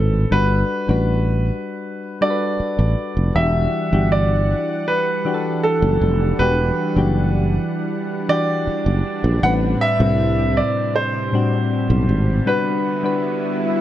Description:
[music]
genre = contemporary R&B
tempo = 79 BPM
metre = 4/4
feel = straight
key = E minor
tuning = A4 = 441 Hz
[part]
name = warm concert grand piano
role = melody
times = 0.0-13.8 s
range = A4 to F#5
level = -22 LUFS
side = right 1 dB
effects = digital delay
[part]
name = soft electric-piano-like synth keys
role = accompaniment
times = 0.0-13.8 s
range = A2 to B4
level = -22 LUFS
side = left 3 dB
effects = chorus
[part]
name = sustaining fretless electric bass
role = bass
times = 0.0-12.4 s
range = E1 to C2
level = -18 LUFS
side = equal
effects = none
[part]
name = lush unison pad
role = sustained chords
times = 3.4-13.8 s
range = C3 to F#5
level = -26 LUFS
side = right 2 dB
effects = chorus
[part]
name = swell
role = sound effects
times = 13.0-13.8 s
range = none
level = -26 LUFS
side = left 1 dB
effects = none
[sound]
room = light reverb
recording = none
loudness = -16 LUFS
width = side -12 dB against mid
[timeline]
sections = 0.0-13.8 A section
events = swell 13.0-13.8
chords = 0.3 Gmaj7; 3.4 Em9; 9.4 Am11; 12.5 Gmaj7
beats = | 0.32 1.08 1.84 2.60 | 3.35 4.11 4.87 5.63 | 6.39 7.15 7.91 8.67 | 9.43 10.19 10.95 11.71 | 12.47 13.23

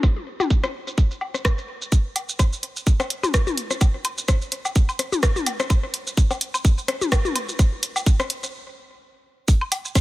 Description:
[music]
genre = techno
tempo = 127 BPM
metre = 4/4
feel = swing 56% on 16ths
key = none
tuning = none
[part]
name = electronic kick drum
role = drums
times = 0.0-10.0 s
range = none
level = -17 LUFS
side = equal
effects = none
[part]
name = punchy analog drum machine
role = drums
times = 0.0-10.0 s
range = hi-hat, rim click, shaker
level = -27 LUFS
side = right 1 dB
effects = low-pass filter on perc, low-pass filter on snare, low-pass filter on hats, low-pass filter on room
[part]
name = organic electronic drum kit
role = percussion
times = 0.0-10.0 s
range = rim click, toms, woodblock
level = -26 LUFS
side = left 3 dB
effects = overdrive, digital delay
[part]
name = vintage drum kit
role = drums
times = 9.5-10.0 s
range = hi-hat, snare drum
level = -33 LUFS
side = left 2 dB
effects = none
[sound]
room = little or no reverb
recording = low-pass filter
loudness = -20 LUFS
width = side -18 dB against mid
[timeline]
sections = 0.0-1.9 A section; 1.9-9.5 B section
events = filter sweep 0.0-1.9; build-up 1.9-9.5; stop 8.5-9.5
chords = none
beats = | 0.03 0.51 0.98 1.45 | 1.92 2.40 2.87 3.34 | 3.81 4.29 4.76 5.23 | 5.70 6.17 6.65 7.12 | 7.59 8.06 8.54 9.01 | 9.48 9.95

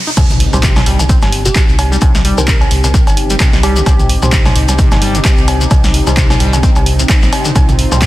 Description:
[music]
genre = acid house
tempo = 130 BPM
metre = 4/4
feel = swing 57% on 16ths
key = C minor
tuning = A4 = 440 Hz
[part]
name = riser and impact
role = sound effects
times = 0.0-2.0 s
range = none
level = -21 LUFS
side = equal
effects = none
[part]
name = acid bass, saw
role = riff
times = 0.1-8.1 s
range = C3 to Eb4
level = -20 LUFS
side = equal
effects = lush chorus, sidechain pumping, tape echo
[part]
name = shekere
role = percussion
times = 0.1-8.1 s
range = none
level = -23 LUFS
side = left 4 dB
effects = none
[part]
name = warm analog pad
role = sustained chords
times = 0.2-8.1 s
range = C3 to G4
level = -21 LUFS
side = left 1 dB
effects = chorus, sidechain pumping
[part]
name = round analog bass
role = bass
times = 0.2-8.1 s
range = G1 to C2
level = -15 LUFS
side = equal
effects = sidechain pumping
[part]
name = electronic kick drum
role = drums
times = 0.2-8.1 s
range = none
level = -12 LUFS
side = equal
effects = none
[part]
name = punchy analog drum machine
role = drums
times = 0.2-8.1 s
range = cowbell, crash cymbal, handclaps, hi-hat, snare drum, toms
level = -16 LUFS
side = right 1 dB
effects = none
[part]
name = deep mellow chord stab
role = stabs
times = 0.5-8.0 s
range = Eb4 to C5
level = -24 LUFS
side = left 3 dB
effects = chorus, phaser, tape echo
[part]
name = plucky unison lead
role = melody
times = 1.5-4.1 s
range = G4 to Bb4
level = -23 LUFS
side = right 2 dB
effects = cassette tape, tape echo
[sound]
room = digital ambience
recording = dense, heavily limited modern master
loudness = -8 LUFS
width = side -16 dB against mid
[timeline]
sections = 0.2-8.1 A section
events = break 0.0; riser 0.0; drop 0.2-8.1; impact 0.2-2.0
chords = 0.2 Cm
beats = | 0.17 0.63 1.09 1.55 | 2.02 2.48 2.94 3.40 | 3.86 4.33 4.79 5.25 | 5.71 6.17 6.63 7.09 | 7.55 8.02

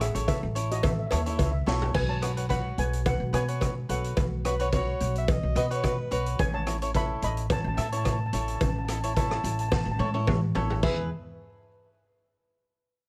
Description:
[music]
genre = calypso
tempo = 108 BPM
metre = 4/4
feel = swing 53% on 16ths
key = E major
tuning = A4 = 441 Hz
[part]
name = steel pan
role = melody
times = 0.0-11.1 s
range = F#4 to B5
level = -36 LUFS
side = equal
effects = none
[part]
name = cavaquinho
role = accompaniment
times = 0.0-11.1 s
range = E4 to E5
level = -35 LUFS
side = equal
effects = none
[part]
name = upright bass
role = bass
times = 0.0-11.1 s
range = A1 to B2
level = -32 LUFS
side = equal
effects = none
[part]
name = street-band drum kit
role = drums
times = 0.0-11.0 s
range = crash cymbal, hi-hat, kick drum, rim click, snare drum, toms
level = -32 LUFS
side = equal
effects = none
[part]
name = cowbell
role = percussion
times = 0.3-11.1 s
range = none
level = -36 LUFS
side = equal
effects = none
[part]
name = warm alto saxophone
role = second line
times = 4.5-6.3, 10.8-11.1 s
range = B4 to E5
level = -36 LUFS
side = equal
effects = none
[sound]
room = little or no reverb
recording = close, detailed microphones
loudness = -27 LUFS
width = mono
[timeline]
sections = 0.0-1.9 A section; 1.9-10.8 B section; 10.8-13.1 C section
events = drum fill 1.7, 9.7-10.8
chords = 0.0 A; 1.9 Bsus2; 6.4 A; 10.8 E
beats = 0.28 0.83 1.39 | 1.95 2.50 3.06 3.61 | 4.17 4.72 5.28 5.84 | 6.39 6.95 7.50 8.06 | 8.61 9.17 9.72 10.28 | 10.83

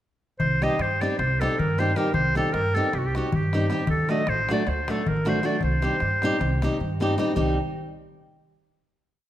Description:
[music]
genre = balkan folk, Balkan wedding band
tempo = 310 BPM (eighths)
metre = 9/8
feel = straight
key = C dorian sharp4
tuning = A4 = 438 Hz
[part]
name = clear clarinet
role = melody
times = 0.4-7.0 s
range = F#4 to Eb5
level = -26 LUFS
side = equal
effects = none
[part]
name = upright bass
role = bass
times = 0.4-7.6 s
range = A1 to G2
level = -28 LUFS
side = equal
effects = none
[part]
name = darbuka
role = percussion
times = 0.4-7.6 s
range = none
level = -29 LUFS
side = left 1 dB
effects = none
[part]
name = nylon-string guitar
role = accompaniment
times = 0.6-7.6 s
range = F#3 to G4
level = -26 LUFS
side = equal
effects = none
[sound]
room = wet recital hall reverb, RT60 1.4 s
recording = none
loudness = -21 LUFS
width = side -12 dB against mid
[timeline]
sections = 0.4-7.4 A section; 7.4-9.1 final chord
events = drum fill 6.8-7.4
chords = 0.4 Cm; 3.9 D; 5.6 Cm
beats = | 0.41 0.60 0.79 0.98 1.18 1.37 1.56 1.75 1.95 | 2.14 2.33 2.52 2.71 2.91 3.10 3.29 3.48 3.68 | 3.87 4.06 4.25 4.45 4.64 4.83 5.03 5.22 5.41 | 5.61 5.80 6.00 6.19 6.38 6.58 6.78 6.97 7.17 | 7.36 7.55

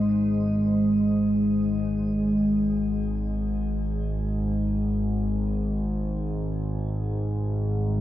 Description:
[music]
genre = dark ambient drone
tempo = free time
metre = none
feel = none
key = Ab major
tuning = A4 = 440 Hz
[part]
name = deep dark ambient pad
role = sustained chords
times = 0.0-8.0 s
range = Ab2 to Eb5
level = -25 LUFS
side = equal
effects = chorus, built-in reverb
[part]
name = dark detuned synth bell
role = arpeggios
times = 0.0-5.9 s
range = Ab4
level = -60 LUFS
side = right 1 dB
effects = chorus, tremolo, diffuse ambient delay, shimmer reverb
[part]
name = analog drone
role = drone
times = 0.0-8.0 s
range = Ab1 to Ab2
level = -27 LUFS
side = equal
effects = chorus
[sound]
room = wet cathedral reverb, RT60 6.3 s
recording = dark, warm production, nothing above 7.8 kHz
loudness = -23 LUFS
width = side -13 dB against mid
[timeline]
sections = 0.0-8.0 A section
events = none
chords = 0.0 Ab; 5.9 G5/Ab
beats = free time

